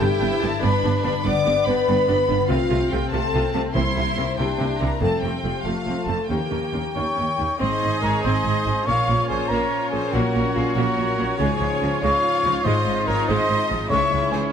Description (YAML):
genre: cinematic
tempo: 95 BPM (dotted quarters)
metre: 12/8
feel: straight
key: F major, Ab major from 7.6 s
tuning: A4 = 445 Hz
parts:
  - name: rich symphonic violin section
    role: melody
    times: 0.0-14.5 s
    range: Fb4 to D6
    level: -30 LUFS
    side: left 2 dB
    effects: none
  - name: clear symphonic violin section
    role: second line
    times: 0.0-14.4 s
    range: A3 to G5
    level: -30 LUFS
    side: left 2 dB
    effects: none
  - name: clear symphonic viola section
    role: accompaniment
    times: 0.0-14.5 s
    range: Fb3 to F4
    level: -29 LUFS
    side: right 3 dB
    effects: none
  - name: mellow French horn section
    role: sustained chords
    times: 0.0-14.5 s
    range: Ab3 to D5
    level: -26 LUFS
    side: left 3 dB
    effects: none
  - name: concert harp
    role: arpeggios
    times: 0.0-14.5 s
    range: G2 to Db6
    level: -31 LUFS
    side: left 8 dB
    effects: none
  - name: clear studio double bass section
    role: bass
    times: 0.0-14.4 s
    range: F1 to Eb2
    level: -28 LUFS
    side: right 3 dB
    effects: none
  - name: rich symphonic cello section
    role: bass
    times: 0.0-14.4 s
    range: Db2 to Db3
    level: -29 LUFS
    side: right 2 dB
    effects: none
  - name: timpani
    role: percussion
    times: 3.7-4.3, 12.7-13.2 s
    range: Ab2 to C3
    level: -31 LUFS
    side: equal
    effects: none
  - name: silver concert flute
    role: second line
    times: 6.9-14.4 s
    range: F5 to Db6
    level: -24 LUFS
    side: left 1 dB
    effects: none
  - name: mellow clarinet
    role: second line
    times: 7.0-14.5 s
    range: F4 to Db5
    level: -30 LUFS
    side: equal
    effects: none
  - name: mellow trombone section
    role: sustained chords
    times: 7.6-14.5 s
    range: Ab2 to Ab3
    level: -31 LUFS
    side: right 4 dB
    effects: none
  - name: mellow trumpet section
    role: stabs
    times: 7.6-14.5 s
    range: Ab4 to Eb5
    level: -28 LUFS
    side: equal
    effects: none
room: moderate scoring stage reverb, RT60 2.1 s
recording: none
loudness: -19 LUFS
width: side -8 dB against mid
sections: 0.0-7.6 A section; 7.6-14.5 B section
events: none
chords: 0.0 G; 2.5 F/C; 3.8 C7; 5.0 F; 6.3 Eb7; 7.6 Ab; 8.9 Bbm; 10.1 Gb/Bb; 11.4 Db; 12.7 Ab6; 13.9 Dbm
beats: 0.61 1.24 1.87 | 2.49 3.12 3.75 4.38 | 5.02 5.65 6.29 6.96 | 7.61 8.24 8.87 9.50 | 10.13 10.76 11.39 12.03 | 12.65 13.28 13.90